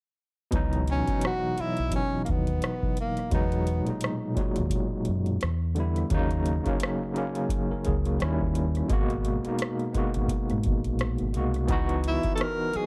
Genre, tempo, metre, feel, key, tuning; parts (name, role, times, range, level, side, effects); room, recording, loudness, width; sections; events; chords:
R&B, neo-soul; 86 BPM; 4/4; swing 57% on 16ths; C# dorian; A4 = 441 Hz
overdriven tine electric piano; accompaniment; 0.5-12.9 s; A#2 to D#5; -31 LUFS; equal; medium tremolo
deep dub fingered electric bass; bass; 0.5-12.8 s; G#1 to G#2; -31 LUFS; equal
booming analog drum machine; drums; 0.5-12.9 s; hi-hat, kick drum, rim click; -33 LUFS; equal
breathy tenor saxophone; melody; 0.9-4.0, 12.1-12.9 s; A#3 to A#4; -32 LUFS; equal; slapback echo
digital ambience; dry, close 1970s-style studio recording; -27 LUFS; mono
0.5-12.9 A section
0.5 C#m11; 3.3 Emaj9#11; 5.4 Em7; 6.1 D#m7; 8.2 D#7b9; 8.9 G#m9; 11.7 C#m11